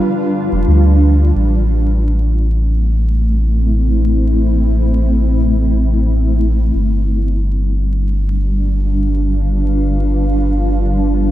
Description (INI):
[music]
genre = ambient dub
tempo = free time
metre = none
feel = none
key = A minor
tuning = A4 = 437 Hz
[part]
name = granular cloud pad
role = sustained chords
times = 0.0-11.3 s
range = G3 to F5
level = -18 LUFS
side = equal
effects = built-in reverb
[part]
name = soft dub sub bass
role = bass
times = 0.5-11.3 s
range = F1 to D2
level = -14 LUFS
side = equal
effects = none
[sound]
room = light reverb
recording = vinyl crackle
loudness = -12 LUFS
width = side -14 dB against mid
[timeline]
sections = 0.0-1.3 A section; 1.3-11.3 B section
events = none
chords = 0.0 G7; 1.3 Am; 6.7 G7